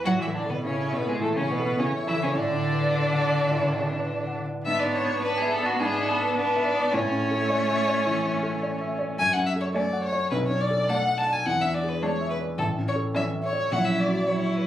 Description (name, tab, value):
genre	quick classical-period movement for piano quartet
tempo	106 BPM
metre	4/4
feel	straight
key	A major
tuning	A4 = 440 Hz
part	rich violin	second line	0.0-14.7 s	G#3 to F#4	-30 LUFS	equal	none
part	warm cello	second line	0.0-14.7 s	G#2 to B3	-29 LUFS	right 2 dB	none
part	dark concert grand piano	accompaniment	0.0-14.7 s	A1 to F#5	-28 LUFS	equal	none
part	warm violin	melody	0.1-14.7 s	F#4 to A5	-27 LUFS	left 2 dB	none
room	light reverb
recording	recorded on a phone in the room, club reverb, compression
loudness	-23 LUFS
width	side -12 dB against mid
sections	0.1-14.7 A section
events	none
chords	0.1 A5; 2.4 Bm7/A; 4.7 E7/G#; 6.9 A; 9.2 F#m; 10.3 Bm7; 11.5 E7; 12.6 A; 13.7 F#7/A#